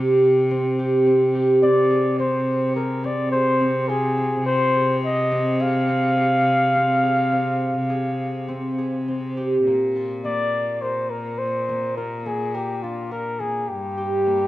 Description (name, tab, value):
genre	contemporary instrumental, chamber music in an uneven meter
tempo	105 BPM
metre	7/4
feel	straight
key	F dorian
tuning	A4 = 440 Hz
part	concert harp	arpeggios	0.0-14.5 s	Bb3 to Bb4	-22 LUFS	equal	none
part	rich cello	bass	0.0-14.5 s	G2 to C3	-27 LUFS	equal	none
part	breathy flugelhorn	melody	1.6-14.5 s	F4 to F5	-22 LUFS	left 1 dB	none
room	moderate recital hall reverb, RT60 1.4 s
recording	minimal, uncompressed stereo recording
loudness	-19 LUFS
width	side -15 dB against mid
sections	0.0-9.7 A section; 9.7-14.5 B section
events	none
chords	0.0 C5; 1.6 Fm/C; 9.7 Bb; 13.7 Gm7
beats	0.51 1.07 | 1.63 2.19 2.76 3.32 3.89 4.46 5.03 | 5.60 6.17 6.75 7.32 7.90 8.49 9.08 | 9.67 10.24 10.82 11.40 11.97 12.54 13.11 | 13.68 14.25